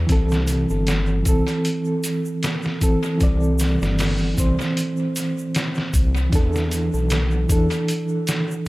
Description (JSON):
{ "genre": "trip hop", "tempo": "77 BPM", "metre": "4/4", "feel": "swing 56% on 16ths", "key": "unclear", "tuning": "A4 = 440 Hz", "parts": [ { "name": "reed electric piano", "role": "accompaniment", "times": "0.0-8.7 s", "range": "E3 to D5", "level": "-22 LUFS", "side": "right 1 dB", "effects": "tremolo, vintage 12-bit sampler grit, tape echo" }, { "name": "dark detuned saw bass", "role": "bass", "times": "0.0-7.7 s", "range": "G1 to E2", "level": "-21 LUFS", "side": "equal", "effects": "none" }, { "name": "trip hop sampler-style drum kit", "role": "drums", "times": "0.1-8.5 s", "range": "hi-hat, kick drum, snare drum", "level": "-23 LUFS", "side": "equal", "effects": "tape echo" }, { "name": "egg shaker", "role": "percussion", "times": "0.1-8.6 s", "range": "none", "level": "-34 LUFS", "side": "right 2 dB", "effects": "tape echo" } ], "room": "light reverb, digital ambience", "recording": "echo-heavy mix", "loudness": "-18 LUFS", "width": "side -19 dB against mid", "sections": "0.0-8.7 A section", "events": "none", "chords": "0.1 C6; 6.3 E7sus4", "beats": "| 0.09 0.87 1.65 2.43 | 3.21 3.99 4.76 5.54 | 6.32 7.10 7.88 8.66" }